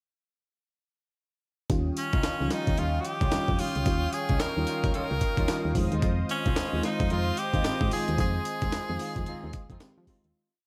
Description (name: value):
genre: R&B, new jack swing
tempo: 111 BPM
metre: 4/4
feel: swing 61% on 16ths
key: F minor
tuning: A4 = 441 Hz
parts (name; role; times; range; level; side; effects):
- FM electric piano with soft pad layer; accompaniment; 1.7-10.4 s; Eb3 to C5; -36 LUFS; equal; chorus
- brassy analog pad; sustained chords; 1.7-10.3 s; C5 to Eb6; -40 LUFS; equal; chorus
- solid FM bass; bass; 1.7-10.3 s; C2 to F3; -33 LUFS; equal; none
- breakbeat sampler-style drum kit; drums; 1.7-10.3 s; hi-hat, kick drum, snare drum, tambourine; -32 LUFS; equal; overdrive
- edgy tenor saxophone; melody; 2.0-9.8 s; Db4 to Bb4; -34 LUFS; equal; none
- muted studio string section; stabs; 2.1-10.2 s; G3 to F4; -41 LUFS; equal; none
room: moderate recital hall reverb, RT60 1.4 s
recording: big arena sound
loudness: -28 LUFS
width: mono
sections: 1.7-10.3 chorus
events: fade-out 8.2-10.3; FM electric piano fill 9.5-10.3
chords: 1.7 Eb9; 5.8 Fm7